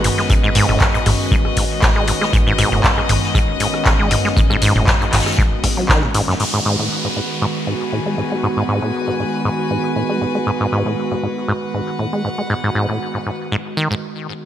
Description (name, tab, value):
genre	acid house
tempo	118 BPM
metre	4/4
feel	swing 54% on 16ths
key	G# minor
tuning	A4 = 440 Hz
part	warbly tape-like pad	sustained chords	0.0-14.0 s	D#3 to F#4	-24 LUFS	right 1 dB	chorus, built-in reverb, sidechain pumping
part	acid bass, saw	riff	0.0-13.9 s	F#2 to G#3	-20 LUFS	equal	ping-pong delay
part	saturated sub bass	bass	0.0-6.0 s	F#1 to G#1	-22 LUFS	equal	tube saturation, sidechain pumping
part	booming analog drum machine	drums	0.0-6.5 s	crash cymbal, handclaps, hi-hat, rim click, toms	-20 LUFS	equal	gated reverb
part	vintage drum kit	drums	0.0-6.4 s	hi-hat, snare drum	-28 LUFS	left 2 dB	high-pass filter on hats, high-pass filter on snare, high-pass filter on room, gated reverb
part	rich chamber string section	texture	0.0-14.0 s	F#4 to G#5	-25 LUFS	left 2 dB	sidechain pumping
part	electronic kick drum	drums	0.3-6.0 s	none	-18 LUFS	equal	none
part	downlifter	sound effects	6.4-10.5 s	none	-27 LUFS	right 1 dB	none
room	light reverb, small room ambience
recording	bright 1980s-style digital production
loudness	-15 LUFS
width	side -11 dB against mid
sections	0.0-6.4 A section; 6.4-14.5 B section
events	drop 0.0-6.4; stop 14.0-14.5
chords	0.0 G#m7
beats	| 0.30 0.81 1.31 1.82 | 2.33 2.84 3.35 3.86 | 4.37 4.87 5.38 5.89 | 6.40 6.91 7.42 7.92 | 8.43 8.94 9.45 9.96 | 10.47 10.98 11.48 11.99 | 12.50 13.01 13.52 14.03